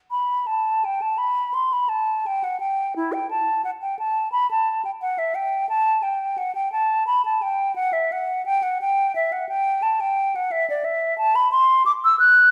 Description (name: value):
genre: classical, baroque-style fantasia for unaccompanied flute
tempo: 87 BPM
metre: 4/4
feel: rubato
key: G major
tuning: A4 = 440 Hz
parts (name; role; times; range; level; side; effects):
- hollow concert flute; solo; 0.1-12.5 s; E4 to F#6; -21 LUFS; equal; none
room: moderate recital hall reverb, RT60 1.5 s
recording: none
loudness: -22 LUFS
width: mono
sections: 0.1-12.5 A section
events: none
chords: none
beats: | 0.11 0.83 1.53 2.24 | 2.94 3.64 4.33 5.02 | 5.71 6.40 7.09 7.78 | 8.47 9.16 9.84 10.52 | 11.19 11.87